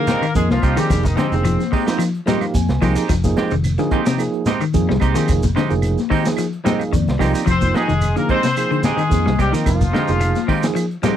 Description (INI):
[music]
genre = afrobeat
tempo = 110 BPM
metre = 4/4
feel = straight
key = F dorian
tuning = A4 = 440 Hz
[part]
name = clear horn section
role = melody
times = 0.0-1.7, 7.5-10.7 s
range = Eb3 to C5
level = -22 LUFS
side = left 2 dB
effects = none
[part]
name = tine electric piano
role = accompaniment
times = 0.0-11.2 s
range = F3 to Ab5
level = -23 LUFS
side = right 6 dB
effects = medium stereo tremolo
[part]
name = clean electric guitar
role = arpeggios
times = 0.0-11.2 s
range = C3 to G3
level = -23 LUFS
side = left 6 dB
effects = spring reverb
[part]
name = semi-hollow electric guitar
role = stabs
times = 0.1-11.2 s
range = Ab3 to G4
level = -22 LUFS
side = right 7 dB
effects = wide subtle chorus
[part]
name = crunchy breakbeat drum kit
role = drums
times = 0.1-11.2 s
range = hi-hat, kick drum, snare drum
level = -21 LUFS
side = equal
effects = none
[part]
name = congas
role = percussion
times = 0.1-11.2 s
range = none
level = -27 LUFS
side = left 21 dB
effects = none
[part]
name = shekere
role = percussion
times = 0.1-11.2 s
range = none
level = -29 LUFS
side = right 2 dB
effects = none
[part]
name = claves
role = percussion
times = 0.2-10.9 s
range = none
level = -34 LUFS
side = right 16 dB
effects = none
[part]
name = fingered electric bass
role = bass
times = 0.4-10.3 s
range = F1 to F2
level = -20 LUFS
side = equal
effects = none
[sound]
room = little or no reverb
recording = dry, close 1970s-style studio recording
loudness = -15 LUFS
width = side -10 dB against mid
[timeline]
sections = 0.0-11.2 A section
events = tine electric piano fill 2.0-3.1, 6.4-7.5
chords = 0.0 Fm11